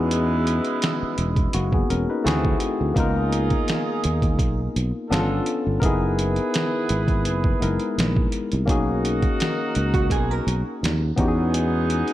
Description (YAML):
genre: R&B, neo-soul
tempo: 84 BPM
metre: 4/4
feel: swing 54% on 16ths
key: B major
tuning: A4 = 440 Hz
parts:
  - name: barky tine electric piano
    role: accompaniment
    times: 0.0-12.1 s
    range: G#3 to B4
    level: -25 LUFS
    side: left 3 dB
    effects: overdrive
  - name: mellow horn section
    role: stabs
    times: 0.0-12.1 s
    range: E3 to B4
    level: -29 LUFS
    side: right 3 dB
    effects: none
  - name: fretless electric bass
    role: bass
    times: 0.0-12.0 s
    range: E1 to E2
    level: -23 LUFS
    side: right 1 dB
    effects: none
  - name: dusty soul sampler-style drum kit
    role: drums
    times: 0.1-12.1 s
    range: hi-hat, kick drum, snare drum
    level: -24 LUFS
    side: right 1 dB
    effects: overdrive
  - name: hollow-body jazz guitar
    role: second line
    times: 9.9-11.1 s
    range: F#4 to A#4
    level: -29 LUFS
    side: right 4 dB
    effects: lush chorus
room: light reverb, digital ambience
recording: none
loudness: -20 LUFS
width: side -14 dB against mid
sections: 0.0-12.1 A section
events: none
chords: 0.0 Emaj9; 2.2 D9; 3.0 C#13; 5.1 G9; 5.8 F#13sus4; 8.7 Bmaj9; 11.2 Emaj9